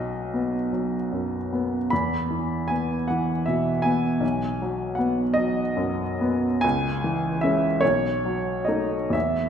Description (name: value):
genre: classical, romantic nocturne for solo piano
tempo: 40-54 BPM (dotted quarters)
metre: 6/8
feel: rubato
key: unclear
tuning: A4 = 440 Hz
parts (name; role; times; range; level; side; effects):
- clear upright piano; solo; 0.0-9.5 s; B1 to B5; -22 LUFS; equal; none
room: wet concert hall reverb, RT60 1.7 s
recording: minimal, uncompressed stereo recording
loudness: -22 LUFS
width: side -8 dB against mid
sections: 0.0-9.5 A section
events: none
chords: 0.0 B; 1.9 E5; 4.2 B; 6.6 C#m; 7.8 B7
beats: 0.71 | 1.91 3.08 | 4.22 5.36 | 6.63 7.82 | 9.14